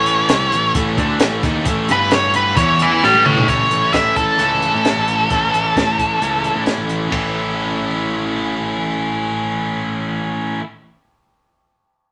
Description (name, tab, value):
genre	indie rock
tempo	132 BPM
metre	4/4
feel	straight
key	A mixolydian, A major from 3.5 s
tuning	A4 = 440 Hz
part	octave-fuzz lead guitar	melody	0.0-6.6 s	A4 to A5	-17 LUFS	equal	distortion
part	overdriven electric guitar	riff	0.0-10.6 s	G2 to E4	-25 LUFS	equal	none
part	scooped high-gain guitar	riff	0.0-10.6 s	E3 to A4	-25 LUFS	equal	distortion
part	fuzz picked electric bass	bass	0.0-10.3 s	G1 to A2	-28 LUFS	equal	overdrive
part	compact cocktail drum kit	drums	0.1-7.2 s	hi-hat, kick drum, ride cymbal, snare drum, toms	-23 LUFS	equal	none
room	moderate studio reverb, RT60 0.7 s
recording	none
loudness	-17 LUFS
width	mono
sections	0.0-3.5 A section; 3.5-7.1 B section; 7.1-10.8 C section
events	lead electric guitar solo 0.0-3.5; drum fill 3.0-3.5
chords	0.0 A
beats	0.29 0.75 1.20 | 1.66 2.11 2.56 3.02 | 3.47 3.93 4.38 4.84 | 5.29 5.75 6.21 6.66 | 7.12 7.57 8.03 8.48 | 8.94 9.39 9.85 10.30